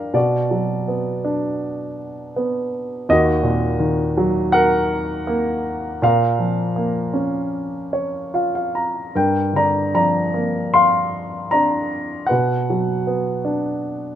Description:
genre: classical, lyrical solo piano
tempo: 73-84 BPM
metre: 4/4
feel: rubato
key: unclear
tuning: A4 = 440 Hz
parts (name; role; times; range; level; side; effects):
- warm grand piano; solo; 0.0-14.2 s; Eb2 to C6; -18 LUFS; equal; none
room: light reverb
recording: close, detailed microphones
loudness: -18 LUFS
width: side -10 dB against mid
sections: 0.0-14.2 A section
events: grand piano fill 7.5-9.2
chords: 0.1 Bm; 3.1 Ebm; 6.0 Bbm; 9.2 Gm7; 12.3 Bm

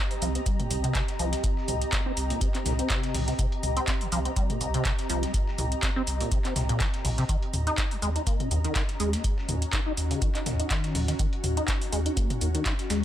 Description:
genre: acid house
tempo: 123 BPM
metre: 4/4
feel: swing 55% on 16ths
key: C phrygian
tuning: A4 = 440 Hz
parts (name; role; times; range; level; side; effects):
- liquid acid bass; riff; 0.0-13.0 s; C2 to Eb4; -31 LUFS; equal; phaser, ensemble chorus, sidechain pumping, digital delay
- ethereal airy pad; texture; 0.0-13.0 s; C4 to Bb5; -34 LUFS; equal; ensemble chorus, built-in reverb, sidechain pumping
- electro analog drum machine; drums; 0.1-13.0 s; handclaps, hi-hat, toms; -32 LUFS; equal; studio reverb
- saturated sub bass; bass; 0.2-13.0 s; Bb1 to Eb2; -30 LUFS; equal; sidechain pumping
- dusty soul sampler-style drum kit; drums; 0.2-13.0 s; hi-hat, shaker, snare drum; -40 LUFS; right 2 dB; sidechain pumping on perc, high-pass filter on perc, studio reverb, sidechain pumping on hats, high-pass filter on hats, high-pass filter on snare, high-pass filter on room
- electronic kick drum; drums; 0.5-12.8 s; none; -29 LUFS; equal; studio reverb
room: little or no reverb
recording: none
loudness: -25 LUFS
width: side -12 dB against mid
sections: 0.0-13.0 A section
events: none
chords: 0.0 Cm7; 7.3 Ebm7

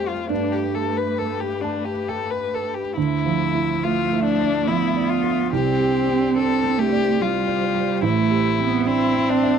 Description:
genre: neoclassical piano and strings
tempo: 66-72 BPM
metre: 3/4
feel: rubato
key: unclear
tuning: A4 = 442 Hz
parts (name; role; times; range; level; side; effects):
- muted violin; melody; 0.0-9.6 s; D4 to B4; -23 LUFS; left 8 dB; none
- muted cello; second line; 0.0-9.6 s; G3 to C4; -23 LUFS; right 5 dB; none
- felt-muted upright piano; accompaniment; 0.0-9.6 s; A1 to A5; -24 LUFS; right 8 dB; none
- muted studio string section; sustained chords; 0.0-9.6 s; F3 to E5; -33 LUFS; left 3 dB; none
room: light reverb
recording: dry, close 1970s-style studio recording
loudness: -19 LUFS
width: side -7 dB against mid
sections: 0.0-3.0 A section; 3.0-9.6 B section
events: none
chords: 0.3 Gadd9; 3.0 Dmadd9; 5.5 Csus2; 8.0 Am7

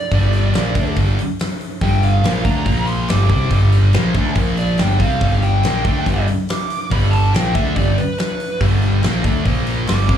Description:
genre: blues rock power trio and southern rock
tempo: 141 BPM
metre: 4/4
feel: straight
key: unclear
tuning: A4 = 439 Hz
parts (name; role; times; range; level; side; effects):
- dark smooth lead guitar; second line; 0.0-10.2 s; B4 to D6; -24 LUFS; right 3 dB; overdrive, plate reverb, slapback echo
- thick fuzz guitar; riff; 0.1-10.2 s; G2 to D4; -20 LUFS; left 1 dB; distortion, slapback echo
- growling fingered electric bass; bass; 0.1-10.2 s; G1 to D2; -17 LUFS; equal; overdrive
- big rock drum kit; drums; 0.1-10.2 s; hi-hat, kick drum, snare drum; -21 LUFS; equal; none
room: little or no reverb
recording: live gig heard through the venue's PA, club reverb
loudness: -14 LUFS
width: side -9 dB against mid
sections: 0.0-10.2 A section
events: lead electric guitar solo 0.0-10.2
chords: 0.0 G5; 2.7 Bb5; 3.1 G5; 4.4 Bb5; 4.8 G5; 9.5 Bb5

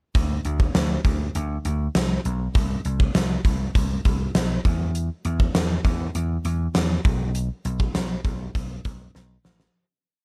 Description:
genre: 1980s-style pop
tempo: 100 BPM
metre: 4/4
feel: straight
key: unclear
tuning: A4 = 442 Hz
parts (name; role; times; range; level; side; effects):
- vintage slap bass; bass; 0.1-9.7 s; A1 to E2; -28 LUFS; equal; none
- gated 80s drum kit; drums; 0.1-9.7 s; hi-hat, kick drum, snare drum; -25 LUFS; equal; gated reverb
room: little or no reverb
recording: none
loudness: -24 LUFS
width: mono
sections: 0.1-9.8 pre-chorus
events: fade-out 7.3-9.8; drum fill 9.2-9.8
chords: none

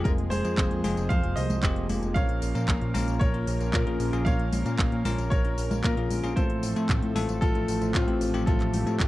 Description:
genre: italo disco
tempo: 114 BPM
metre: 4/4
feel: straight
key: Bb dorian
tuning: A4 = 440 Hz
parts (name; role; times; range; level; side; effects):
- bright grand piano; melody; 0.0-9.1 s; C4 to F5; -32 LUFS; left 1 dB; tape echo
- warm analog pad; sustained chords; 0.0-9.1 s; F3 to Bb4; -33 LUFS; right 2 dB; chorus
- fat analog bass; bass; 0.0-9.1 s; F1 to Bb2; -29 LUFS; equal; none
- bell-like tine electric piano; stabs; 0.1-9.1 s; Ab3 to Bb4; -33 LUFS; left 4 dB; none
- electronic kick drum; drums; 0.1-9.1 s; none; -26 LUFS; equal; none
- house drum kit; drums; 0.1-9.1 s; congas, handclaps, hi-hat, tambourine; -33 LUFS; equal; none
room: little or no reverb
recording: dry, close 1970s-style studio recording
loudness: -23 LUFS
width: side -16 dB against mid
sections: 0.0-9.1 A section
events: none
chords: 0.0 Fm; 2.2 Bbm; 6.4 F/A

